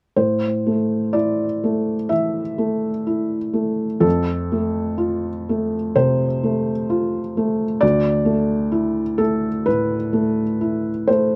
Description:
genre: neoclassical minimalist piano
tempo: 63 BPM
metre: 4/4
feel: rubato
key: A minor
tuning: A4 = 438 Hz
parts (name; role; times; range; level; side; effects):
- felt-muted upright piano; solo; 0.2-11.4 s; D2 to E5; -20 LUFS; equal; none
room: light reverb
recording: recorded outdoors, with no room sound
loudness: -21 LUFS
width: mono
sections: 0.2-11.4 A section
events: none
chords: 0.2 Am; 4.0 F; 7.8 Dsus2

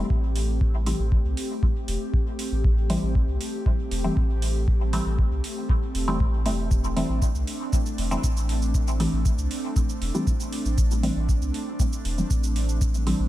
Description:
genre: dub techno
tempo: 118 BPM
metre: 4/4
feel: straight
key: A minor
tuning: A4 = 441 Hz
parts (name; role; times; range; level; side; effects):
- airy breathy pad; sustained chords; 0.0-13.3 s; A3 to G4; -32 LUFS; equal; chorus, sidechain pumping
- filtered dub chord stab; stabs; 0.0-13.3 s; E3 to C4; -30 LUFS; equal; chorus, phaser, sidechain pumping, dub echo
- warm sub bass; bass; 0.0-13.3 s; E1 to C2; -26 LUFS; equal; sidechain pumping
- electronic kick drum; drums; 0.1-12.9 s; none; -23 LUFS; equal; none
- electronic hi-hat and cabasa; drums; 0.4-13.2 s; none; -37 LUFS; right 4 dB; none
room: digital ambience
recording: none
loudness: -22 LUFS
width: side -15 dB against mid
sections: 0.0-13.3 A section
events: filter sweep on synth stab 0.0-13.3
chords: 0.0 Am7

